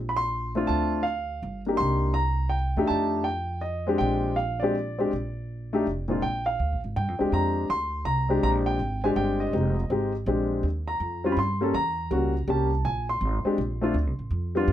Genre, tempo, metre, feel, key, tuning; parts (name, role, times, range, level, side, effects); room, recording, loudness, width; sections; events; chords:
jazz piano trio; 163 BPM; 3/4; swing 63% on 8ths; Bb mixolydian; A4 = 440 Hz
upright bass; bass; 0.0-14.7 s; F1 to G2; -28 LUFS; right 1 dB
warm grand piano; melody; 0.1-14.7 s; Bb2 to C6; -25 LUFS; left 1 dB
light reverb; -24 LUFS; side -12 dB against mid
0.0-6.2 A section; 6.2-14.7 A section
0.0 Bbsus2; 0.7 Dm7; 1.4 G5; 1.8 Cm7; 2.9 F13; 4.0 Bb13; 5.9 F5; 6.2 Bb13; 9.5 Fm7; 10.3 Bb13; 10.6 Eb13; 11.7 Edim7; 12.8 Bb9; 13.9 Dm7